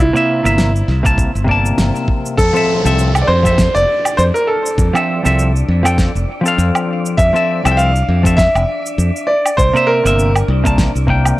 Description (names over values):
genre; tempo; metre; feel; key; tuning
sunset chillout; 100 BPM; 4/4; swing 57% on 16ths; F major; A4 = 438 Hz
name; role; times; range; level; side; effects
clear grand piano; melody; 0.0-10.4 s; E4 to G5; -17 LUFS; equal; tape echo
modern bright fingered electric bass; bass; 0.0-11.3 s; F1 to F2; -15 LUFS; equal; none
wind-like tuned noise texture; texture; 0.3-11.4 s; C4 to E6; -28 LUFS; left 2 dB; built-in reverb
semi-hollow electric guitar; accompaniment; 0.1-11.4 s; C3 to A5; -17 LUFS; moving between left 4 dB and right 3 dB; auto-pan, tape echo
electronic shaker, snare drum and woodblock; drums; 0.2-11.4 s; none; -20 LUFS; equal; overdrive
electronic kick drum; drums; 1.1-11.2 s; none; -16 LUFS; equal; none
downlifter; sound effects; 2.4-7.2 s; none; -26 LUFS; right 2 dB; none
room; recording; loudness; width
digital ambience; dry, gritty hardware recording, cassette tape; -12 LUFS; side -17 dB against mid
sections
0.0-2.4 A section; 2.4-11.4 B section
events
band accent 1.8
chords
0.0 C9; 2.4 Fmaj7; 4.8 Dm9; 7.2 Fmaj7; 9.3 C9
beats
0.58 1.18 1.78 | 2.38 2.98 3.58 4.18 | 4.78 5.38 5.98 6.58 | 7.18 7.78 8.38 8.98 | 9.58 10.18 10.78 11.38